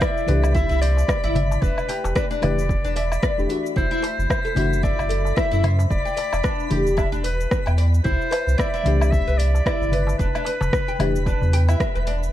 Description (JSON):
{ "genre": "organic downtempo", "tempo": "112 BPM", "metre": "4/4", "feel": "swing 57% on 16ths", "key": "E minor", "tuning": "A4 = 443 Hz", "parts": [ { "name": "clear clarinet", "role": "melody", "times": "0.0-11.8 s", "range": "B4 to E5", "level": "-27 LUFS", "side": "equal", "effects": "tape echo" }, { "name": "oud", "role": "arpeggios", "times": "0.0-12.2 s", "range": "D4 to G5", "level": "-27 LUFS", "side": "left 1 dB", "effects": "tape echo" }, { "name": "deep house drum kit", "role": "drums", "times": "0.0-12.3 s", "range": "cabasa, hi-hat, rim click, woodblock", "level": "-28 LUFS", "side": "left 1 dB", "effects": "overdrive, small room ambience" }, { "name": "electronic kick drum", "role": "drums", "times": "0.0-11.9 s", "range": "none", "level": "-25 LUFS", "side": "equal", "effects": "overdrive, small room ambience" }, { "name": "twinkling granular texture", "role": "texture", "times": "0.1-12.3 s", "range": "B5", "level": "-37 LUFS", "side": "right 2 dB", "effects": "built-in reverb" }, { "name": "deep mellow chord stab", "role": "accompaniment", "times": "0.3-11.2 s", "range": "E3 to G4", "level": "-29 LUFS", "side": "left 4 dB", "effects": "chorus, cassette tape, sidechain pumping, tape echo" }, { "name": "warm sub bass", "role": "bass", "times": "0.3-12.3 s", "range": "E1 to F#2", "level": "-20 LUFS", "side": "equal", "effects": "none" }, { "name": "darbuka", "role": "percussion", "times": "0.3-11.7 s", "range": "none", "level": "-29 LUFS", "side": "left 1 dB", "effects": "none" } ], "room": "little or no reverb", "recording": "dark, warm production", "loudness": "-18 LUFS", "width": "side -13 dB against mid", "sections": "0.0-12.3 A section", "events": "band accent 11.8", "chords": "0.0 Cmaj7; 1.6 Em7; 3.8 F#m7b5; 5.9 Em7; 8.0 Cmaj7; 10.2 Em7", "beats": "0.01 0.55 1.08 | 1.62 2.16 2.69 3.23 | 3.76 4.30 4.83 5.37 | 5.91 6.44 6.98 7.51 | 8.05 8.59 9.12 9.66 | 10.19 10.73 11.26 11.80" }